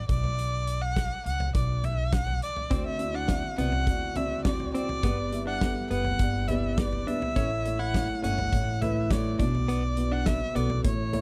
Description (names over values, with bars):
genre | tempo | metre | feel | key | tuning
piano-driven pop | 103 BPM | 4/4 | straight | B minor | A4 = 440 Hz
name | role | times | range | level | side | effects
rich erhu | melody | 0.0-11.2 s | C#5 to F#5 | -35 LUFS | equal | none
upright bass | bass | 0.0-11.2 s | F#1 to D2 | -33 LUFS | equal | none
huge arena drum kit | drums | 0.1-11.2 s | hi-hat, kick drum, snare drum, toms | -33 LUFS | equal | none
dark baby grand piano | accompaniment | 2.7-11.2 s | G2 to E5 | -34 LUFS | equal | none
direct-recorded clean electric guitar | riff | 2.7-10.7 s | B3 to E4 | -37 LUFS | equal | none
room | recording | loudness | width
light reverb | dry, close 1970s-style studio recording | -28 LUFS | mono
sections
0.0-11.2 A section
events
none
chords
0.1 Bm; 2.7 D7; 5.0 G; 7.4 A; 9.4 Bm